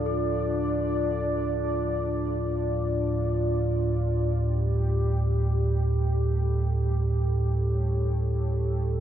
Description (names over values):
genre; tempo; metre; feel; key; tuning
dark ambient drone; free time; none; none; D harmonic minor; A4 = 440 Hz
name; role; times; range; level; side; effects
dark analog pad; sustained chords; 0.0-9.0 s; D4 to D5; -29 LUFS; left 1 dB; chorus
gamelan-type bronze metallophone; arpeggios; 0.0-4.8 s; A4; -40 LUFS; left 2 dB; ping-pong delay
deep rumbling drone; drone; 0.0-9.0 s; D2 to A2; -26 LUFS; right 1 dB; built-in reverb, phaser
room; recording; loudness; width
moderate huge ambient reverb, RT60 7.5 s; none; -24 LUFS; side -10 dB against mid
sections
0.0-9.0 A section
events
none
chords
0.0 Dm; 4.3 A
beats
free time